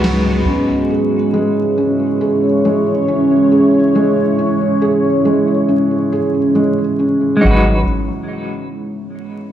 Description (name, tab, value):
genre	trip hop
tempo	69 BPM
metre	4/4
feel	swing 58% on 16ths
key	unclear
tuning	A4 = 441 Hz
part	clean electric guitar	accompaniment	0.0-0.4, 7.4-7.8 s	G#3 to B4	-19 LUFS	equal	tremolo, tape echo
part	deep dark ambient pad	sustained chords	0.0-7.8 s	G#3 to C#5	-16 LUFS	equal	chorus, built-in reverb
part	felt-muted upright piano	arpeggios	0.0-7.8 s	F#3 to G#4	-16 LUFS	right 1 dB	low-pass filter, ping-pong delay
part	soft dub sub bass	bass	0.0-0.4, 7.4-7.8 s	G#1 to C#2	-16 LUFS	equal	none
room	light reverb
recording	played on a big sound system in a bare room, large studio reverb, vinyl crackle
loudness	-12 LUFS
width	side -11 dB against mid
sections	0.0-7.4 A section; 7.4-9.5 B section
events	none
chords	0.5 C#m/G#; 7.4 G#m7